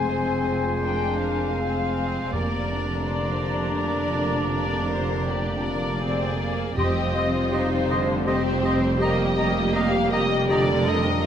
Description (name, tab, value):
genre	cinematic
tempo	80 BPM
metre	3/4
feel	rubato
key	F dorian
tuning	A4 = 440 Hz
part	muted studio violin section	melody	0.0-11.3 s	C5 to Ab5	-30 LUFS	left 3 dB	none
part	clear oboe	second line	0.0-11.0 s	C5 to Eb5	-32 LUFS	right 2 dB	none
part	mellow clarinet	second line	0.0-11.0 s	G4 to Ab4	-32 LUFS	left 2 dB	none
part	mellow small flute group	second line	0.0-11.0 s	Ab5 to C6	-34 LUFS	left 6 dB	none
part	muted symphonic violin section	second line	0.0-11.3 s	F4 to C5	-35 LUFS	equal	none
part	muted symphonic viola section	accompaniment	0.0-11.3 s	D3 to Eb4	-29 LUFS	right 2 dB	none
part	mellow French horn section	sustained chords	0.0-11.2 s	D3 to G4	-29 LUFS	left 3 dB	none
part	muted symphonic cello section	bass	0.0-11.2 s	F2	-30 LUFS	right 3 dB	none
part	muted symphonic double bass section	bass	0.0-11.2 s	F1	-29 LUFS	right 2 dB	none
part	timpani	percussion	2.3-7.9 s	F2	-31 LUFS	equal	none
room	light reverb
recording	none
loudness	-21 LUFS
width	side -9 dB against mid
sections	0.0-11.3 A section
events	none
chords	0.0 Fm; 6.8 Cm/F; 9.0 Eb/F